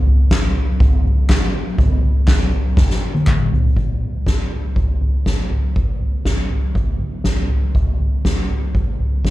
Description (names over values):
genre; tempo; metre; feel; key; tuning
folk; 121 BPM; 4/4; straight; none; none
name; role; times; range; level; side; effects
soft-mallet drum kit; drums; 0.1-9.3 s; kick drum, snare drum, toms; -15 LUFS; equal; none
group handclap; percussion; 0.3-3.4 s; none; -29 LUFS; left 1 dB; slapback echo
room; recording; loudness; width
small room reverb; live gig heard through the venue's PA, club reverb; -15 LUFS; side -16 dB against mid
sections
0.0-3.8 A section; 3.8-9.3 B section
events
drum fill 2.8-3.8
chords
none